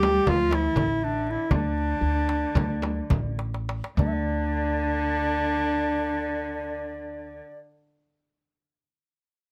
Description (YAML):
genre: Turkish makam ensemble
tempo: 200-249 BPM (eighths)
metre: 9/8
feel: straight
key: D makam huseyni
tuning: A4 = 442 Hz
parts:
  - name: clear clarinet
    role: melody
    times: 0.0-7.4 s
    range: D4 to G4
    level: -29 LUFS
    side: equal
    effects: none
  - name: bright bass bansuri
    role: second line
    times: 0.0-7.6 s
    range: D5 to G5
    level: -36 LUFS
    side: equal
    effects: none
  - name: rich cello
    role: second line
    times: 0.0-7.4 s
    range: D3 to G3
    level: -35 LUFS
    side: equal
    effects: none
  - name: upright bass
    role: bass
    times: 0.0-7.4 s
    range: A1 to D2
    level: -32 LUFS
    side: equal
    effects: none
  - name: darbuka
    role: percussion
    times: 0.0-4.3 s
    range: none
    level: -32 LUFS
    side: equal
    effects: none
  - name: frame drum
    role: percussion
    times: 0.0-4.2 s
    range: none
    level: -32 LUFS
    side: equal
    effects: none
room: light reverb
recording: none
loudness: -26 LUFS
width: mono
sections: 0.0-4.0 A section; 4.0-9.4 B section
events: slowing down 0.0-4.0; drum fill 3.4-4.0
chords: none